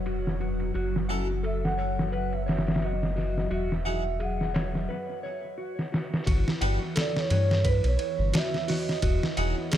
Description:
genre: trip hop.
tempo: 87 BPM.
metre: 4/4.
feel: swing 56% on 16ths.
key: unclear.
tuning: A4 = 440 Hz.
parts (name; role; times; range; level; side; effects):
string machine, cellos; sustained chords; 0.0-9.8 s; E3 to F#4; -35 LUFS; equal; ensemble chorus.
mellow electric guitar; arpeggios; 0.0-9.8 s; F#4 to F#5; -36 LUFS; left 1 dB; lush chorus, tape echo.
round analog bass; bass; 0.0-9.5 s; E1 to G2; -28 LUFS; equal; none.
trip hop sampler-style drum kit; drums; 0.1-9.8 s; hi-hat, kick drum, ride cymbal, snare drum; -29 LUFS; equal; low-pass filter on cymbals, low-pass filter on snare, low-pass filter on hats, low-pass filter on kick, analog delay.
harpsichord; accompaniment; 1.1-9.5 s; E3 to B4; -35 LUFS; equal; harmonic tremolo, tape echo.
pure breathy sine lead; melody; 1.5-9.4 s; B4 to F#5; -33 LUFS; right 2 dB; lush chorus, tape echo.
room: little or no reverb.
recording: echo-heavy mix.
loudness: -25 LUFS.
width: side -11 dB against mid.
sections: 0.0-6.3 A section; 6.3-9.8 B section.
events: break 4.9-6.3; drum fill 5.7-6.3.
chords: 0.0 Esus2; 0.7 F#m7; 3.5 Eadd9; 6.3 Gmaj7; 9.0 Emaj9.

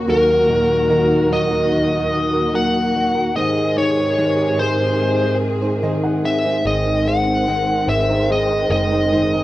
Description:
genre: pop.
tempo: 73 BPM.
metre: 4/4.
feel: straight.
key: unclear.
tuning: A4 = 440 Hz.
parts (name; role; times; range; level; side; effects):
warm concert grand piano; accompaniment; 0.0-9.4 s; D#2 to F#5; -23 LUFS; left 1 dB; plate reverb.
dark studio string section; sustained chords; 0.0-9.4 s; D#2 to G#4; -21 LUFS; equal; plate reverb.
nylon-string guitar; arpeggios; 0.0-9.4 s; G#2 to B#4; -23 LUFS; right 2 dB; plate reverb.
smooth overdriven lead guitar; melody; 0.1-9.4 s; A#4 to F#5; -19 LUFS; left 1 dB; plate reverb.
vintage muted fingered electric bass; bass; 6.7-9.4 s; F#1 to G#1; -24 LUFS; equal; none.
room: wet studio reverb, RT60 0.5 s.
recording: rough home demo mix.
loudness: -15 LUFS.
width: side -15 dB against mid.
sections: 0.0-6.6 A section; 6.6-9.4 B section.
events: grand piano fill 5.4-6.6.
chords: 0.1 D#m; 3.4 G#.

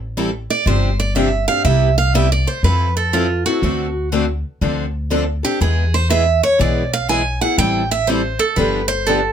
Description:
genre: acoustic string swing (jazz manouche).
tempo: 121 BPM.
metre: 4/4.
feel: swing 66% on 8ths.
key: A minor.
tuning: A4 = 440 Hz.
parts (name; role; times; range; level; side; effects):
upright bass; bass; 0.0-9.3 s; G1 to F2; -19 LUFS; left 1 dB; none.
picked acoustic archtop guitar; accompaniment; 0.2-9.2 s; C3 to A4; -25 LUFS; right 4 dB; none.
picked steel-string acoustic guitar; accompaniment; 0.2-9.2 s; C3 to A4; -21 LUFS; left 6 dB; none.
picked steel-string acoustic guitar; second line; 0.5-9.3 s; F4 to G#5; -18 LUFS; right 4 dB; none.
room: light reverb.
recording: close, detailed microphones.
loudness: -15 LUFS.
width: side -8 dB against mid.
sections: 0.0-9.3 A section.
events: steel-string acoustic guitar solo 0.0-9.3.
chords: 0.0 Am7; 0.7 G7sus4; 1.7 Cmaj7; 2.6 Fmaj7; 3.6 D7; 4.6 Dm7; 5.6 E; 7.6 Am7; 8.6 G7.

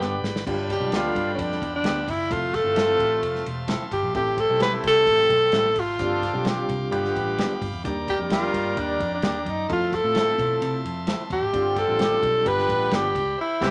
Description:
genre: uptempo 1960s-style soul.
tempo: 130 BPM.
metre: 4/4.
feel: straight.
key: unclear.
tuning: A4 = 443 Hz.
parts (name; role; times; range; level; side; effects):
clear horn section; second line; 0.0-13.7 s; B2 to Bb4; -35 LUFS; equal; none.
overdriven reed electric piano; accompaniment; 0.0-13.7 s; G3 to E5; -33 LUFS; equal; medium tremolo.
bright tonewheel organ; sustained chords; 0.0-13.7 s; F4 to D6; -38 LUFS; equal; none.
electric guitar at the edge of break-up; stabs; 0.0-13.7 s; F3 to A4; -33 LUFS; equal; none.
vintage muted picked electric bass; bass; 0.0-13.7 s; E1 to C3; -35 LUFS; equal; none.
warm soul drum kit; drums; 0.0-13.7 s; crash cymbal, hi-hat, kick drum, ride cymbal, snare drum; -34 LUFS; equal; none.
breathy tenor saxophone; melody; 0.7-13.7 s; Db4 to B4; -24 LUFS; equal; none.
room: moderate club reverb, RT60 0.6 s.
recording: none.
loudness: -23 LUFS.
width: mono.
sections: 0.5-13.7 A section.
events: drum fill 0.0-0.5; band accent 13.4-13.7.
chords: 0.5 G7; 2.3 Fmaj7; 4.2 Am7; 6.0 G7sus4; 6.9 G7; 7.8 Ebmaj7; 9.7 Fmaj7; 11.5 G7sus4; 12.5 G7.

